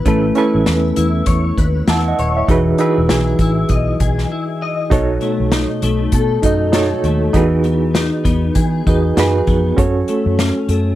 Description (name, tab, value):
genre	indie pop, bedroom pop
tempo	99 BPM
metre	4/4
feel	swing 60% on 16ths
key	E major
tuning	A4 = 435 Hz
part	clean electric guitar	accompaniment	0.0-11.0 s	B2 to D#5	-19 LUFS	left 4 dB	ensemble chorus, warbly pitch drift
part	reed electric piano	accompaniment	0.0-11.0 s	C#4 to A5	-19 LUFS	right 4 dB	fast tremolo, cassette tape
part	vintage muted fingered electric bass	bass	0.1-10.9 s	D#1 to E3	-18 LUFS	equal	none
part	unplugged drum kit	drums	0.1-10.9 s	hi-hat, kick drum, snare drum	-18 LUFS	equal	none
room	light reverb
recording	dry, close 1970s-style studio recording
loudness	-13 LUFS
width	side -14 dB against mid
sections	0.0-4.9 A section; 4.9-11.0 B section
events	break 4.3-4.9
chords	0.1 Aadd9; 2.5 Emaj7; 4.9 B7; 7.3 Emaj7; 9.8 F#m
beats	| 0.05 0.66 1.27 1.88 | 2.48 3.09 3.70 4.31 | 4.91 5.52 6.13 6.74 | 7.34 7.95 8.56 9.17 | 9.78 10.39